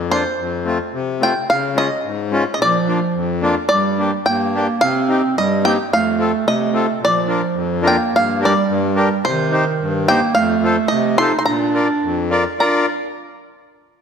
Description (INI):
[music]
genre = alpine folk, alpine dance band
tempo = 108 BPM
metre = 2/4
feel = straight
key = Bb major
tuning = A4 = 440 Hz
[part]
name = bluegrass banjo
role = melody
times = 0.0-12.9 s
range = C5 to C6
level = -19 LUFS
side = equal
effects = none
[part]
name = accordion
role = accompaniment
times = 0.0-12.9 s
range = F2 to D5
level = -19 LUFS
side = left 3 dB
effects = none
[part]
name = warm clarinet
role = second line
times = 2.6-12.9 s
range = Eb3 to Eb4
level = -20 LUFS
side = right 5 dB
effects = none
[sound]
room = moderate scoring stage reverb, RT60 1.8 s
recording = none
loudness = -15 LUFS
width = side -7 dB against mid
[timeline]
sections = 0.0-8.1 A section; 8.1-12.6 B section; 12.6-13.7 C section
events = none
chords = 0.4 F; 1.5 Db; 2.6 Bb; 3.7 Gm; 4.8 Cm; 5.9 F7; 7.0 Bb; 8.1 Gm; 9.2 Cm; 10.4 F; 11.5 Bb